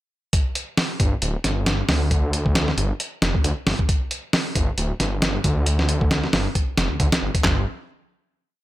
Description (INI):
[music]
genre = breakbeat, breaks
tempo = 135 BPM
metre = 4/4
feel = swing 57% on 16ths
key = unclear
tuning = A4 = 440 Hz
[part]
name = dusty soul sampler-style drum kit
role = drums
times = 0.3-7.6 s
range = handclaps, hi-hat, kick drum, snare drum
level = -21 LUFS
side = equal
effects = none
[part]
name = detuned saw bass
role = bass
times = 1.0-7.6 s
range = D1 to D2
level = -22 LUFS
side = equal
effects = none
[sound]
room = little or no reverb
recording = none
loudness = -19 LUFS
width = side -16 dB against mid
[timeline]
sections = 0.3-7.4 drop; 7.4-8.6 final note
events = drop 0.3-7.4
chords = none